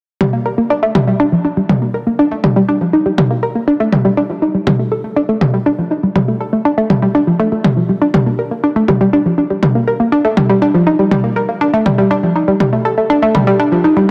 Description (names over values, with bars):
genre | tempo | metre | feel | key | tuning
melodic techno | 121 BPM | 4/4 | straight | unclear | A4 = 440 Hz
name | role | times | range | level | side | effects
analog pluck | arpeggios | 0.2-14.0 s | F3 to Bb4 | -15 LUFS | equal | chorus, delay
electronic toms | drums | 0.2-13.4 s | none | -18 LUFS | equal | none
room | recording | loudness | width
moderate lush hall reverb, RT60 2.0 s | dense, heavily limited modern master | -14 LUFS | mono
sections
0.2-14.1 A section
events
filter sweep on synth arpeggio sound 0.2-14.1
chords
none